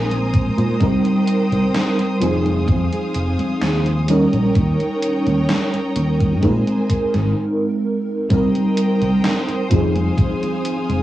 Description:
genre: vaporwave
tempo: 64 BPM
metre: 4/4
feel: straight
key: F minor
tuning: A4 = 440 Hz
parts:
  - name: FM electric piano with soft pad layer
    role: accompaniment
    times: 0.0-11.0 s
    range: F3 to Bb4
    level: -19 LUFS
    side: equal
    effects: ensemble chorus, cassette tape, tape echo
  - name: bright studio string section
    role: sustained chords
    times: 0.0-11.0 s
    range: C5 to Eb6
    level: -28 LUFS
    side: equal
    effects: cassette tape
  - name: fretless electric bass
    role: bass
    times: 0.0-11.0 s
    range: F1 to Bb2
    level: -20 LUFS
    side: equal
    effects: none
  - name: gated 80s digital drum machine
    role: drums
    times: 0.1-11.0 s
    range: congas, hi-hat, snare drum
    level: -25 LUFS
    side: right 1 dB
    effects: gated reverb, gated reverb snare, cassette tape
  - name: electronic kick drum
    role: drums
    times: 0.3-10.4 s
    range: none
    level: -18 LUFS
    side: equal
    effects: cassette tape
room: light reverb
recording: home recording on cassette, small room ambience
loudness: -16 LUFS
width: side -14 dB against mid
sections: 0.0-8.3 A section; 8.3-11.0 B section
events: stop 7.4-8.3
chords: 0.0 Bb9sus4; 0.8 Cm7; 2.2 Fm7; 4.1 Eb7; 6.4 Bb9sus4; 8.3 Cm7; 9.7 Fm7

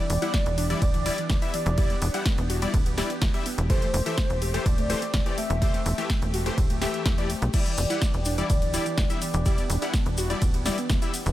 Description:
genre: progressive house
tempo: 125 BPM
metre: 4/4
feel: straight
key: E minor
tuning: A4 = 440 Hz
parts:
  - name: warm velvety synth lead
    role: melody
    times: 0.0-9.8 s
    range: C5 to E5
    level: -33 LUFS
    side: right 1 dB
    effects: chorus, digital delay
  - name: lush unison pad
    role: sustained chords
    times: 0.0-11.3 s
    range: E3 to G4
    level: -37 LUFS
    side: equal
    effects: chorus, phaser, sidechain pumping
  - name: soft round pluck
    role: arpeggios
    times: 0.0-11.3 s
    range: E3 to A4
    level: -34 LUFS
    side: equal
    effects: analog chorus, sidechain pumping, dub echo
  - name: supersaw stab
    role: stabs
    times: 0.0-11.1 s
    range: E3 to F#5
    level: -32 LUFS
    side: left 3 dB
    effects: sidechain pumping, dub echo
  - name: tight sequencer bass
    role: bass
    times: 0.1-11.3 s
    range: D1 to E2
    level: -28 LUFS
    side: equal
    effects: sidechain pumping
  - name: house drum kit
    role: drums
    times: 0.1-11.3 s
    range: crash cymbal, hi-hat, ride cymbal, snare drum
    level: -33 LUFS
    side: equal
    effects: none
  - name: electronic kick drum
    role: drums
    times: 0.3-11.0 s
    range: none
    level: -25 LUFS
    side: equal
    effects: overdrive
  - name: tube shaker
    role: percussion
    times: 7.5-11.3 s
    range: none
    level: -37 LUFS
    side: left 2 dB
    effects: none
room: little or no reverb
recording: none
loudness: -22 LUFS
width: side -14 dB against mid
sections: 0.0-11.3 A section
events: none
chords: 0.0 Em7; 3.7 Am7; 7.5 Em7

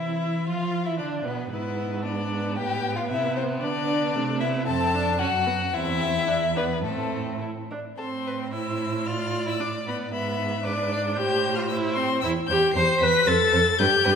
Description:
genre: quick classical-period movement for string quartet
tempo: 114 BPM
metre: 2/4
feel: rubato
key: A minor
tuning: A4 = 441 Hz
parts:
  - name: rich violin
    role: melody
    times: 0.0-14.2 s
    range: A4 to C7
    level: -27 LUFS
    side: left 8 dB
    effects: none
  - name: rich violin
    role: second line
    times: 0.0-14.1 s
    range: A3 to E5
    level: -30 LUFS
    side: left 2 dB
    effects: none
  - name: rich viola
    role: accompaniment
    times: 0.0-14.2 s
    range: A3 to C5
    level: -27 LUFS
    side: right 1 dB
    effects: none
  - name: warm cello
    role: bass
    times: 0.0-14.1 s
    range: E2 to F3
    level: -29 LUFS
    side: right 3 dB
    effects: none
room: wet scoring stage reverb, RT60 1.9 s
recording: minimal, uncompressed stereo recording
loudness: -22 LUFS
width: side -7 dB against mid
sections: 0.0-8.0 A section; 8.0-14.2 A section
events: none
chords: 0.5 Dm; 1.5 E7/G#; 2.6 Am; 3.6 Bm/D; 4.1 Am/C; 4.7 F; 5.2 B5/F#; 5.7 C/E; 6.3 E5; 6.8 Am; 9.1 D5/A; 10.1 E7/G#; 11.2 Am; 12.2 C/E; 13.3 F

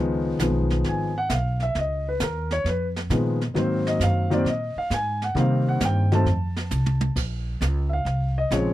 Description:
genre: jazz piano trio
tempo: 133 BPM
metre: 4/4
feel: swing 67% on 8ths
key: unclear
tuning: A4 = 443 Hz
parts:
  - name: warm concert grand piano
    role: melody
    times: 0.0-8.7 s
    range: Db3 to A5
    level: -24 LUFS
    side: left 1 dB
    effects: none
  - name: upright bass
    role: bass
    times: 0.0-8.7 s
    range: Ab1 to C3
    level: -24 LUFS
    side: equal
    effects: none
  - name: jazz brush drum kit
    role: drums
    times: 0.4-8.7 s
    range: brushed snare drum, crash cymbal, hi-hat, kick drum, snare drum, toms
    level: -31 LUFS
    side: right 2 dB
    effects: none
room: little or no reverb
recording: dry, close 1970s-style studio recording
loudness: -21 LUFS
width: side -14 dB against mid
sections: 0.0-8.7 A section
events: drum fill 6.7-7.2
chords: 0.0 Db9; 3.6 Ab9; 5.4 Cm7; 6.3 F; 7.2 Bbm

